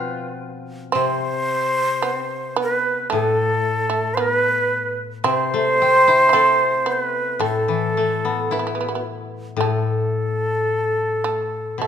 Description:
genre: japanese traditional, Japanese chamber music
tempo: 55 BPM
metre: 4/4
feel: rubato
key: A hirajoshi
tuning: A4 = 440 Hz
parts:
  - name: bright shakuhachi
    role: melody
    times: 0.0-11.9 s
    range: A4 to C5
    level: -19 LUFS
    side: right 1 dB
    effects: none
  - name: shamisen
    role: second line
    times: 0.0-11.9 s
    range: A3 to E4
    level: -25 LUFS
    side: right 6 dB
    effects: none
  - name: koto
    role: accompaniment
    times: 0.0-11.9 s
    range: A2 to A4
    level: -25 LUFS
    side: left 5 dB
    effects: none
room: moderate recital hall reverb, RT60 1.7 s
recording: minimal, uncompressed stereo recording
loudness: -17 LUFS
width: side -8 dB against mid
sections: 0.0-11.9 A section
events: none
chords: none

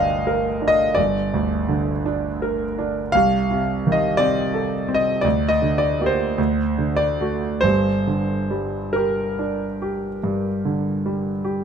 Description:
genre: classical, romantic nocturne for solo piano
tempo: 45-59 BPM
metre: 4/4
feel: rubato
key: G minor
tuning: A4 = 440 Hz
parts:
  - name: clear grand piano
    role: solo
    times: 0.0-11.6 s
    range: G1 to G5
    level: -19 LUFS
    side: right 1 dB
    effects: none
room: light reverb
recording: close, detailed microphones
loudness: -19 LUFS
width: side -7 dB against mid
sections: 0.0-11.6 A section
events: none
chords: 0.0 Gm; 3.2 Adim/C; 5.2 Gm/D; 6.4 D; 7.6 Gm

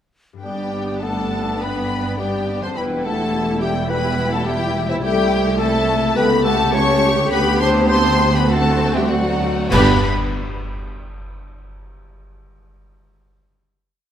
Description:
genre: classical, dramatic, fast romantic movement for symphony orchestra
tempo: 103 BPM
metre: 4/4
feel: uneven beats, rubato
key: G major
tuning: A4 = 440 Hz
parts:
  - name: concert harp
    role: arpeggios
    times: 0.3-10.1 s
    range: E2 to D5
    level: -26 LUFS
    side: left 4 dB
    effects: none
  - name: warm symphonic violin section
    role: melody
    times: 0.4-10.1 s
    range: E5 to C#6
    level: -24 LUFS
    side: left 3 dB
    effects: none
  - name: mellow hollow silver concert flute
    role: second line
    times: 0.4-10.1 s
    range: C5 to B5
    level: -26 LUFS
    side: equal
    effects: none
  - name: warm clarinet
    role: second line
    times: 0.4-10.0 s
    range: E4 to C#5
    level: -27 LUFS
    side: equal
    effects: none
  - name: warm symphonic violin section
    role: second line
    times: 0.4-10.1 s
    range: E4 to C#5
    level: -28 LUFS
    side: left 3 dB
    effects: none
  - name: rich symphonic viola section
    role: accompaniment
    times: 0.4-10.1 s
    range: G3 to G4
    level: -24 LUFS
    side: right 1 dB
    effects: none
  - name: warm symphonic cello section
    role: bass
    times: 0.4-10.1 s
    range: C2 to G2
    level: -25 LUFS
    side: right 3 dB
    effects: none
  - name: warm symphonic double bass section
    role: bass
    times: 0.4-10.1 s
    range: E1 to D2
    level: -25 LUFS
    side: right 3 dB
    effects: none
  - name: mellow French horn section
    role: sustained chords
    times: 0.5-10.0 s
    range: E3 to C#4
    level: -24 LUFS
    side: left 2 dB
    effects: none
  - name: cymbal swell, clash cymbals and concert bass drum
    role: percussion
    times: 7.3-10.9 s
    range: none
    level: -27 LUFS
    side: equal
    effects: none
room: moderate concert hall reverb, RT60 2.3 s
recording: none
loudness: -16 LUFS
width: side -9 dB against mid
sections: 0.4-9.7 A section; 9.7-12.2 final chord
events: slowing down 3.9-9.7; band accent 9.7-10.3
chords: 0.4 G; 2.8 Em7; 5.0 Am7/C; 6.2 A7/C#; 7.3 G/D; 8.5 D9; 9.7 G

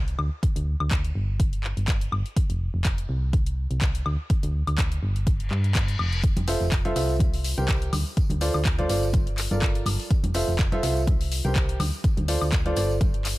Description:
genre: piano house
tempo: 124 BPM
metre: 4/4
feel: swing 55% on 16ths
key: F major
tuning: A4 = 439 Hz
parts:
  - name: solid FM bass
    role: bass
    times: 0.0-13.3 s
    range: F1 to G2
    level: -26 LUFS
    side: equal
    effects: sidechain pumping
  - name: house drum kit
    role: drums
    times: 0.1-13.4 s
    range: handclaps, hi-hat, woodblock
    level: -32 LUFS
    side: left 2 dB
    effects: overdrive
  - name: electronic kick drum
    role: drums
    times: 0.4-13.1 s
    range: none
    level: -23 LUFS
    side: equal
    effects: overdrive
  - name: reverse cymbal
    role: sound effects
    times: 5.4-6.2 s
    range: none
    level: -36 LUFS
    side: left 4 dB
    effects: none
  - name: tambourine and congas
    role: percussion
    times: 6.2-13.4 s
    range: none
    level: -34 LUFS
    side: equal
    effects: none
  - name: clear upright piano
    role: riff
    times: 6.5-12.9 s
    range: F4 to G5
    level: -28 LUFS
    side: right 1 dB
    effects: sidechain pumping, digital delay
room: little or no reverb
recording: none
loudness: -22 LUFS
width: side -18 dB against mid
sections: 0.0-13.4 A section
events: reverse cymbal 5.4-6.2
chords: 0.2 G5; 1.4 N.C.; 2.4 F5; 3.3 N.C.; 4.1 G5; 5.3 Fsus2; 6.2 Fmaj7; 7.2 C5; 7.9 Dm7; 9.1 Gm9; 10.1 Fmaj7; 11.1 C5; 11.8 Dm7

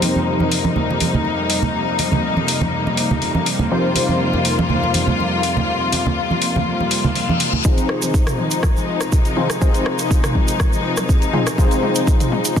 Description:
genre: afro house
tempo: 122 BPM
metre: 4/4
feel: swing 53% on 16ths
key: F minor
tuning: A4 = 440 Hz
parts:
  - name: clear symphonic string section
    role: sustained chords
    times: 0.0-12.6 s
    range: F2 to F4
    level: -20 LUFS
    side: left 2 dB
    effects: sidechain pumping
  - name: warm analog keys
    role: stabs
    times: 0.0-12.6 s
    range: F3 to C5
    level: -24 LUFS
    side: left 1 dB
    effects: chorus, sidechain pumping, low-pass filter, digital delay
  - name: house drum kit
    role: drums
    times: 0.0-12.6 s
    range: hi-hat, rim click, toms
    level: -23 LUFS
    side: left 1 dB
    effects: none
  - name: congas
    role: percussion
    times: 0.0-7.6 s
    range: none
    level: -21 LUFS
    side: right 2 dB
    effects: none
  - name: reverse cymbal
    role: sound effects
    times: 6.9-7.6 s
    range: none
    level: -26 LUFS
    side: left 5 dB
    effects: none
  - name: electronic kick drum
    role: drums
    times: 7.6-12.6 s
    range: none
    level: -16 LUFS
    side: equal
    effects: none
  - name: tube shaker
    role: percussion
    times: 7.6-12.6 s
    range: none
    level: -29 LUFS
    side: right 7 dB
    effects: none
  - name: warm sub bass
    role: bass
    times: 7.7-12.6 s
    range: none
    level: barely audible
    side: none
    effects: none
room: light reverb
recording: dense, heavily limited modern master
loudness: -16 LUFS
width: side -8 dB against mid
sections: 0.0-7.6 A section; 7.6-12.6 B section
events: reverse cymbal 6.9-7.6; build-up 7.6-12.6; drum fill 7.6-12.6; filter sweep on synth keys 7.6-12.6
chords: 0.0 Eb6/F; 7.6 Fm7

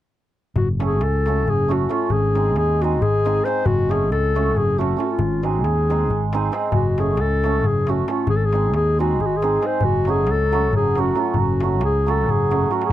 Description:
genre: balkan folk, Balkan wedding band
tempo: 272 BPM (eighths)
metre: 7/8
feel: straight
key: F# hungarian minor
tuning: A4 = 440 Hz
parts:
  - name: mellow clarinet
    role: melody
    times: 0.6-12.9 s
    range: E#4 to B#4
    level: -21 LUFS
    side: left 3 dB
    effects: none
  - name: fingered electric bass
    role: bass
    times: 0.6-12.9 s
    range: F#1 to D#2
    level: -22 LUFS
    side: equal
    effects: none
  - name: darbuka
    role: percussion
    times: 0.6-12.9 s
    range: none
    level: -26 LUFS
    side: left 2 dB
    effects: none
  - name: hammered dulcimer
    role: accompaniment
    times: 0.8-12.9 s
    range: F#3 to A4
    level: -24 LUFS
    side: right 7 dB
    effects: none
room: light reverb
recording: dry, close 1970s-style studio recording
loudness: -17 LUFS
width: side -13 dB against mid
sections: 0.6-12.9 A section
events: drum fill 12.6-12.9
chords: 0.6 F#m; 2.1 G#; 3.6 F#m; 5.2 G#; 6.7 F#m; 8.3 G#; 9.8 F#m

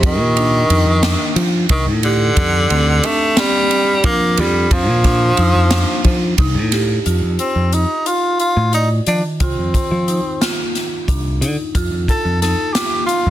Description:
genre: progressive instrumental, band music in an uneven meter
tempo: 179 BPM (eighths)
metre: 7/8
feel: straight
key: F mixolydian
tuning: A4 = 443 Hz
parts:
  - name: bright tenor saxophone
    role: melody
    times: 0.0-13.3 s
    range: D3 to A4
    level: -17 LUFS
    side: equal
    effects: none
  - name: picked electric bass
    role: bass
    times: 0.0-13.3 s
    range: C2 to F3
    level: -17 LUFS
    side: equal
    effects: none
  - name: swinging big-band drum kit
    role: drums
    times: 0.0-13.2 s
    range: hi-hat, kick drum, ride cymbal, snare drum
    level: -20 LUFS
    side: equal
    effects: none
  - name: marimba with medium hard mallets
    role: arpeggios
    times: 0.4-13.3 s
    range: Eb3 to D5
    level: -23 LUFS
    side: right 2 dB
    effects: none
room: moderate small room ambience, RT60 0.5 s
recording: dense, heavily limited modern master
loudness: -13 LUFS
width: side -12 dB against mid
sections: 0.0-7.1 A section; 7.1-13.3 B section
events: none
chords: 0.0 F7sus4; 2.4 G5; 4.7 F7sus4; 7.1 F7(no3); 11.8 Dm/F (rootless)

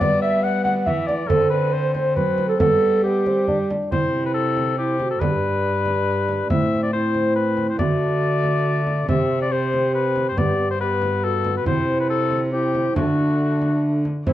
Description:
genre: classical, renaissance-style consort dance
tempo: 139 BPM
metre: 3/4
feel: straight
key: G major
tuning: A4 = 440 Hz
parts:
  - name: warm oboe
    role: melody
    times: 0.0-14.3 s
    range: E4 to F#5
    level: -25 LUFS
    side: left 5 dB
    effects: none
  - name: mellow hollow tenor recorder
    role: second line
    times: 0.0-14.3 s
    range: D4 to F#5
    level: -23 LUFS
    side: right 2 dB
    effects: none
  - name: mellow bassoon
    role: accompaniment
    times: 0.0-14.3 s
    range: A3 to D4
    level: -26 LUFS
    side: left 2 dB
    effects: none
  - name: rich cello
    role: bass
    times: 0.0-14.3 s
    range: G2 to G3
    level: -25 LUFS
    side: right 1 dB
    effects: none
  - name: frame drum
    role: percussion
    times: 0.0-14.3 s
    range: none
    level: -26 LUFS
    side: right 2 dB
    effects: none
room: wet stone room reverb, RT60 1.3 s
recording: dark, warm production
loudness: -18 LUFS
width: side -13 dB against mid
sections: 0.0-3.9 A section; 3.9-14.3 B section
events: none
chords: 0.0 G; 1.3 D7; 2.6 G; 3.9 C; 5.2 G; 6.5 Am; 7.8 D; 9.1 C5; 10.4 G; 11.7 C; 13.0 D

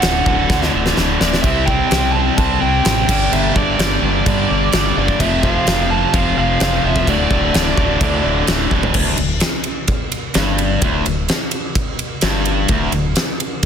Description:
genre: hard rock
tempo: 128 BPM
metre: 4/4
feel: straight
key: unclear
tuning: A4 = 437 Hz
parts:
  - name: dark smooth lead guitar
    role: melody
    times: 0.0-8.4 s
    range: D5 to A5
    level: -20 LUFS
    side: right 2 dB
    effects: overdrive, digital delay
  - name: distorted electric guitar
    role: riff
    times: 0.0-13.1 s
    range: D2 to C4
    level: -22 LUFS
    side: left 11 dB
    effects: overdrive
  - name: distorted electric guitar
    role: riff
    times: 0.0-13.1 s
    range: D2 to C4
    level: -21 LUFS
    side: right 13 dB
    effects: overdrive
  - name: growling fingered electric bass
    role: bass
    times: 0.0-13.1 s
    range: D1 to G2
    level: -21 LUFS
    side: equal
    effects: overdrive
  - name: huge arena drum kit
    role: drums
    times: 0.0-13.7 s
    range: crash cymbal, kick drum, ride cymbal, snare drum, toms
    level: -18 LUFS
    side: equal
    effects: none
  - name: sludgy distorted guitar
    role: riff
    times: 1.4-8.9, 12.7-13.1 s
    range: D2 to C5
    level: -24 LUFS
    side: equal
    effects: overdrive
room: light reverb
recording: dense, heavily limited modern master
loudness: -14 LUFS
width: side -8 dB against mid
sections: 0.0-8.9 A section; 8.9-13.7 B section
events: drum fill 0.5-1.4, 8.7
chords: 0.0 D; 1.4 C; 3.1 G; 5.2 F; 7.1 D; 8.9 Dsus4

